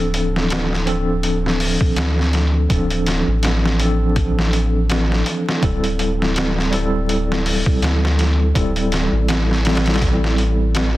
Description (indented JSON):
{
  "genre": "trip hop",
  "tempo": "82 BPM",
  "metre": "4/4",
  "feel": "swing 56% on 16ths",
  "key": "D minor",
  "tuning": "A4 = 438 Hz",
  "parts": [
    { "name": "bright tine electric piano", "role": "accompaniment", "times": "0.0-11.0 s", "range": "F3 to A4", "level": "-21 LUFS", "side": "equal", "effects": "medium stereo tremolo, tape echo" },
    { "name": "round analog bass", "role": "bass", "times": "0.0-11.0 s", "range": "D1 to D2", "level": "-19 LUFS", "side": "equal", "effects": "none" },
    { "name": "trip hop sampler-style drum kit", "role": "drums", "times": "0.1-11.0 s", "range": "hi-hat, kick drum, snare drum", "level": "-20 LUFS", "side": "equal", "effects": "overdrive, small room ambience" }
  ],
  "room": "little or no reverb",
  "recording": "dense, heavily limited modern master, vinyl crackle",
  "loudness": "-16 LUFS",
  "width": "side -16 dB against mid",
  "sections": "0.0-11.0 A section",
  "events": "none",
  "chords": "0.0 Dm7; 5.6 Am7/D",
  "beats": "0.50 1.24 1.97 | 2.70 3.43 4.16 4.89 | 5.62 6.36 7.09 7.82 | 8.55 9.28 10.02 10.75"
}